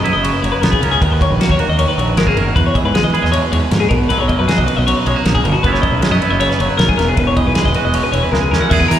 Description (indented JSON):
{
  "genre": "math rock and midwest emo",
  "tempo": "156 BPM",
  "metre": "4/4",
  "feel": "straight",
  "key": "E lydian",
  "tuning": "A4 = 440 Hz",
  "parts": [
    { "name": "twangy electric guitar", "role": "accompaniment", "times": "0.0-9.0 s", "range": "E2 to G#4", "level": "-19 LUFS", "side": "right 7 dB", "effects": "slapback echo" },
    { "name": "twelve-string electric guitar", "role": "arpeggios", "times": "0.0-9.0 s", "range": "E4 to D#5", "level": "-18 LUFS", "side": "left 6 dB", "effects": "slapback echo" },
    { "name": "fuzz fingered electric bass", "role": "bass", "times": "0.0-9.0 s", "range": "E1 to E3", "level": "-17 LUFS", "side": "equal", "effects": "overdrive" },
    { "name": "loose indie drum kit", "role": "drums", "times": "0.1-9.0 s", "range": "crash cymbal, hi-hat, kick drum, ride cymbal, snare drum", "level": "-19 LUFS", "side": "equal", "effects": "none" }
  ],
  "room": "studio ambience",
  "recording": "live gig heard through the venue's PA, recital hall reverb",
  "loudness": "-12 LUFS",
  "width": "side -10 dB against mid",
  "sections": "0.0-8.7 A section",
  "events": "drum fill 8.3-8.7",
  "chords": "0.0 F#7sus4; 1.0 D#m7; 2.6 Emaj7; 3.9 Bmaj7; 5.6 E69",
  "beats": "0.24 0.63 | 1.01 1.40 1.78 2.17 | 2.56 2.94 3.33 3.71 | 4.10 4.49 4.87 5.26 | 5.64 6.03 6.41 6.80 | 7.18 7.56 7.95 8.33 | 8.71"
}